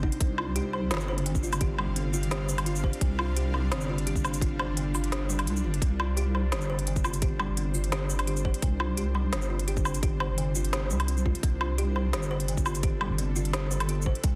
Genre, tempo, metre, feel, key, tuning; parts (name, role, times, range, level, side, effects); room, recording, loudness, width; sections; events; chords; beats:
half-time drum and bass; 171 BPM; 4/4; half-time; A4 = 441 Hz
bowed-like drone; sustained chords; 0.0-14.4 s; C3 to F5; -39 LUFS; equal; built-in reverb, sidechain pumping
kalimba; arpeggios; 0.0-14.4 s; C3 to C5; -38 LUFS; equal; tape echo
deep soft wobble bass; bass; 0.0-14.4 s; G1 to C2; -31 LUFS; equal; chorus
electronic kick drum; drums; 0.0-14.3 s; -30 LUFS; equal
organic electronic drum kit; drums; 0.1-14.3 s; hi-hat, shaker, snare drum, woodblock; -35 LUFS; equal; overdrive
light reverb; dense, heavily limited modern master; -28 LUFS; mono
0.0-14.4 A section
kick drops out 5.1-5.8
0.0 C5
| 0.20 0.56 0.91 1.26 | 1.61 1.96 2.31 2.66 | 3.01 3.36 3.71 4.06 | 4.42 4.77 5.12 5.47 | 5.82 6.17 6.52 6.87 | 7.22 7.57 7.92 8.28 | 8.63 8.98 9.33 9.68 | 10.03 10.38 10.73 11.08 | 11.43 11.78 12.13 12.48 | 12.84 13.19 13.54 13.89 | 14.24